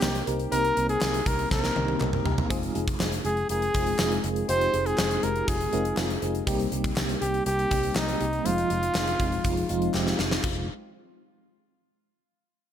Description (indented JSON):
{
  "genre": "1980s-style pop",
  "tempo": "121 BPM",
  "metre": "4/4",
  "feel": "straight",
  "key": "F minor",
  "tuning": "A4 = 442 Hz",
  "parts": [
    { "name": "warm flugelhorn", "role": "melody", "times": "0.0-9.9 s", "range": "Eb4 to C5", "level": "-28 LUFS", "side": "equal", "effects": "ping-pong delay" },
    { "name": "FM electric piano with tremolo", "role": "accompaniment", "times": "0.0-10.7 s", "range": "F3 to C5", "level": "-29 LUFS", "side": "right 1 dB", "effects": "phaser" },
    { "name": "vintage muted fingered electric bass", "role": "bass", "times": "0.0-10.7 s", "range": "F1 to C2", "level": "-31 LUFS", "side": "equal", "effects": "none" },
    { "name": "gated 80s drum kit", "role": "drums", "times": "0.0-10.6 s", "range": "crash cymbal, hi-hat, kick drum, snare drum, tambourine, toms", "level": "-29 LUFS", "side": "equal", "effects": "gated reverb" },
    { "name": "group handclap", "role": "percussion", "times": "0.0-10.7 s", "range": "none", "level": "-44 LUFS", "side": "left 3 dB", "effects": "none" }
  ],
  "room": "light reverb, small room ambience",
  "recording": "none",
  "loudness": "-23 LUFS",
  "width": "side -9 dB against mid",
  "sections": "0.0-10.4 A section; 10.4-12.4 B section",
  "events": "drum fill 1.5-2.5, 9.9-10.4",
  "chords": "0.0 Cm7; 2.5 Fm7; 6.5 Cm7; 8.5 Fm7"
}